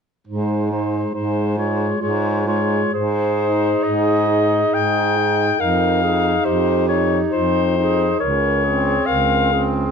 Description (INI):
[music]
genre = classical, lyrical piece for single-reed quartet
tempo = 68 BPM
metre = 3/4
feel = rubato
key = Ab major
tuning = A4 = 443 Hz
[part]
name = mellow soprano saxophone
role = melody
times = 0.3-9.7 s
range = C5 to G5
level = -20 LUFS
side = left 6 dB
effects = none
[part]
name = warm clarinet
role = second line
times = 0.3-9.9 s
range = Eb4 to Bb4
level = -23 LUFS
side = right 11 dB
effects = none
[part]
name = mellow tenor saxophone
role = accompaniment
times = 0.3-9.9 s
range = Ab3 to Eb4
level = -23 LUFS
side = left 3 dB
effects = none
[part]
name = warm baritone saxophone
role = bass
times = 0.3-9.9 s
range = Db2 to Ab2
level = -22 LUFS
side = right 3 dB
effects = none
[sound]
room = moderate large studio reverb, RT60 1.3 s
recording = dark, warm production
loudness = -16 LUFS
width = side -6 dB against mid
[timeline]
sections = 0.3-2.9 A section; 2.9-9.9 B section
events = none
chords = 0.3 Ab; 5.6 F5; 8.2 Bbm9/Db